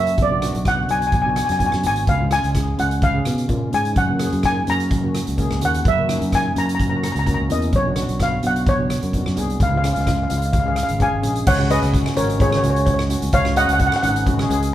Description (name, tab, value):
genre	calypso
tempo	128 BPM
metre	4/4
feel	straight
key	unclear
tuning	A4 = 440 Hz
part	steel pan	melody	0.0-14.2 s	G#4 to A#5	-21 LUFS	equal	none
part	steel pan	accompaniment	0.0-14.7 s	G#3 to G#4	-25 LUFS	equal	none
part	fingered electric bass	bass	0.0-14.7 s	G#1 to B2	-22 LUFS	equal	none
part	street-band drum kit	drums	0.1-14.7 s	crash cymbal, hi-hat, kick drum, rim click	-22 LUFS	equal	none
room	moderate large studio reverb, RT60 1.4 s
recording	band playing live in one room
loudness	-17 LUFS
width	side -12 dB against mid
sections	0.0-11.5 A section; 11.5-14.7 B section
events	none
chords	0.2 Bm; 2.1 C#; 4.0 F#; 5.9 F#7; 7.7 Bmadd9; 9.6 C#; 11.5 C#sus4